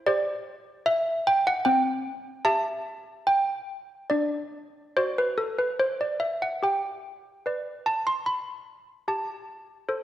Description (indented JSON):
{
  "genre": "classical, tune for handbells",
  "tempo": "74 BPM",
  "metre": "3/4",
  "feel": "straight",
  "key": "unclear",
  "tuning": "A4 = 444 Hz",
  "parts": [
    { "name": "malleted handbells", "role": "solo", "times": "0.0-10.0 s", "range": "C4 to C6", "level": "-24 LUFS", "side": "equal", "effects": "none" }
  ],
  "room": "wet scoring stage reverb, RT60 1.7 s",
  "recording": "worn, warbling old tape, cassette tape, warbly pitch drift",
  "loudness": "-24 LUFS",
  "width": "side -12 dB against mid",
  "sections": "0.0-10.0 A section",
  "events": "none",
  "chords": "0.0 C; 4.1 D; 6.6 G; 9.1 Am7/G"
}